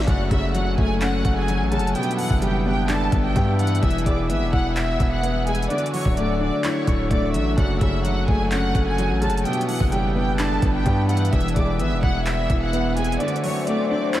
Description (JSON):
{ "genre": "hip hop, trap", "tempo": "128 BPM", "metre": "4/4", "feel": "half-time", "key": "F# minor", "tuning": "A4 = 440 Hz", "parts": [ { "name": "warm studio violin section", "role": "melody", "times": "0.0-14.2 s", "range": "G4 to F#6", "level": "-26 LUFS", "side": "equal", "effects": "tape echo" }, { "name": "distorted 808-style bass", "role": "bass", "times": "0.0-13.2 s", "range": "D1 to G2", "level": "-24 LUFS", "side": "equal", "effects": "distortion" }, { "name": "trap drum kit", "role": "drums", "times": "0.0-14.2 s", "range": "handclaps, hi-hat, kick drum, snare drum", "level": "-25 LUFS", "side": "equal", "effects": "none" }, { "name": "warm concert grand piano", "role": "accompaniment", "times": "0.1-14.2 s", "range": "F#2 to E5", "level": "-24 LUFS", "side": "left 1 dB", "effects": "none" }, { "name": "pipe organ, foundations", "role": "sustained chords", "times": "0.1-14.2 s", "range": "D3 to F#5", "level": "-29 LUFS", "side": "left 1 dB", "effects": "none" }, { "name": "swell", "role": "sound effects", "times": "12.9-14.2 s", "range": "none", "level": "-31 LUFS", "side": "left 4 dB", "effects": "none" } ], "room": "moderate cathedral reverb, RT60 6.6 s", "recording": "dreamy mix soaked in reverb, vinyl crackle", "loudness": "-19 LUFS", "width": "side -13 dB against mid", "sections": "0.0-14.2 A section", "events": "swell 12.9-14.2; kick muted 13.2-14.2", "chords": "0.1 F#m; 2.0 G6; 3.8 E; 5.7 Dadd9; 7.6 F#m; 9.5 G6; 11.3 E; 13.2 Dadd9", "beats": "| 0.08 0.55 1.01 1.48 | 1.95 2.42 2.89 3.36 | 3.83 4.29 4.76 5.23 | 5.70 6.17 6.64 7.11 | 7.58 8.04 8.51 8.98 | 9.45 9.92 10.39 10.86 | 11.33 11.79 12.26 12.73 | 13.20 13.67 14.14" }